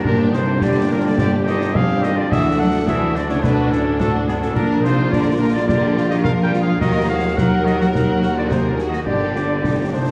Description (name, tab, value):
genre	cinematic, heroic adventure film score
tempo	106 BPM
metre	4/4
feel	straight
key	unclear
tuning	A4 = 440 Hz
part	warm symphonic violin section	melody	0.0-10.1 s	D4 to Bb4	-30 LUFS	equal	none
part	dark symphonic violin section	second line	0.0-10.1 s	A3 to G4	-34 LUFS	equal	none
part	mellow clarinet	second line	0.0-10.1 s	Cb4 to Bb4	-31 LUFS	equal	none
part	mellow hollow large flute ensemble	second line	0.0-10.1 s	Ab4 to G5	-33 LUFS	equal	none
part	warm oboe	second line	0.0-10.1 s	Cb4 to Bb4	-34 LUFS	equal	none
part	rich symphonic viola section	accompaniment	0.0-10.1 s	Bb3 to Bb4	-33 LUFS	equal	none
part	concert harp	arpeggios	0.0-10.1 s	G2 to G5	-31 LUFS	equal	none
part	warm trumpet	stabs	0.0-10.1 s	Ab4 to G5	-28 LUFS	equal	none
part	clear symphonic double bass section	bass	0.0-10.1 s	G1 to G2	-27 LUFS	equal	none
part	rich symphonic cello section	bass	0.0-10.1 s	Ab2 to G3	-25 LUFS	equal	none
part	warm tuba	bass	0.0-10.1 s	G1 to Eb2	-27 LUFS	equal	none
part	concert bass drum, concert snare drum and clash cymbals	drums	0.0-10.1 s	none	-27 LUFS	equal	none
part	mellow French horn section	sustained chords	0.1-10.1 s	G3 to Gb4	-30 LUFS	equal	none
room	moderate concert hall reverb, RT60 2.1 s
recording	small room ambience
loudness	-18 LUFS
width	mono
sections	0.0-10.1 A section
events	none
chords	0.0 Gm; 2.3 D; 4.6 Bb; 6.8 Ebm; 9.1 Gm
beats	| 0.04 0.61 1.18 1.74 | 2.31 2.87 3.43 3.99 | 4.55 5.12 5.68 6.24 | 6.80 7.37 7.93 8.50 | 9.06 9.63